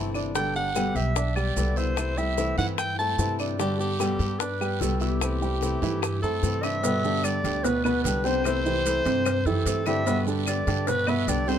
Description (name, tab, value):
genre	latin, Cuban son and guajira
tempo	148 BPM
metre	4/4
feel	straight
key	G major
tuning	A4 = 437 Hz
part	nylon-string guitar	accompaniment	0.0-11.6 s	B2 to G4	-31 LUFS	left 4 dB	none
part	warm baby grand piano	arpeggios	0.0-11.6 s	B2 to E6	-29 LUFS	right 3 dB	none
part	upright bass	bass	0.0-11.6 s	G1 to G2	-29 LUFS	equal	none
part	bongos and cowbell	percussion	0.1-11.5 s	none	-34 LUFS	left 10 dB	none
part	claves	percussion	0.1-11.3 s	none	-37 LUFS	left 6 dB	none
part	maracas	percussion	0.1-11.6 s	none	-37 LUFS	right 7 dB	none
part	guiro	percussion	0.2-11.6 s	none	-40 LUFS	right 9 dB	none
part	warm clarinet	melody	0.4-11.6 s	G4 to A5	-28 LUFS	equal	none
room	light reverb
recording	none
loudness	-23 LUFS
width	side -9 dB against mid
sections	0.0-6.8 A section; 6.8-11.6 B section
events	drum fill 6.6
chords	0.4 G; 2.0 C6; 3.6 G; 5.2 C6; 6.8 G; 8.4 C6; 10.1 G